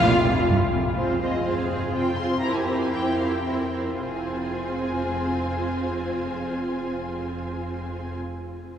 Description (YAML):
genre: quick classical-period movement for string orchestra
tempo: 105-127 BPM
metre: 3/4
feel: rubato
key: F minor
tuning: A4 = 440 Hz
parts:
  - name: warm studio violin section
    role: melody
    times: 0.0-8.2 s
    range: Eb5 to C6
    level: -31 LUFS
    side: left 3 dB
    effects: none
  - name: rich symphonic violin section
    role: second line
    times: 0.0-8.2 s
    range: F4 to C5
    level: -33 LUFS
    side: left 1 dB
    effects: none
  - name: rich studio viola section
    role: accompaniment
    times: 0.0-8.2 s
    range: C4 to F4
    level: -26 LUFS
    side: right 1 dB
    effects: none
  - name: clear studio double bass section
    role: bass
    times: 0.0-8.2 s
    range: F1 to F2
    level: -32 LUFS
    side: right 1 dB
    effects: none
  - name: rich studio cello section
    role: bass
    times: 0.0-8.2 s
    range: F2 to Ab4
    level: -30 LUFS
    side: right 2 dB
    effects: none
room: wet cathedral reverb, RT60 6.8 s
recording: recorded in a church or concert hall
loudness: -23 LUFS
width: side -9 dB against mid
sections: 1.0-4.0 A section; 4.0-7.4 B section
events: slowing down 0.3-4.0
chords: 0.0 N.C.; 1.0 Fm; 2.4 C7/F; 4.0 Fm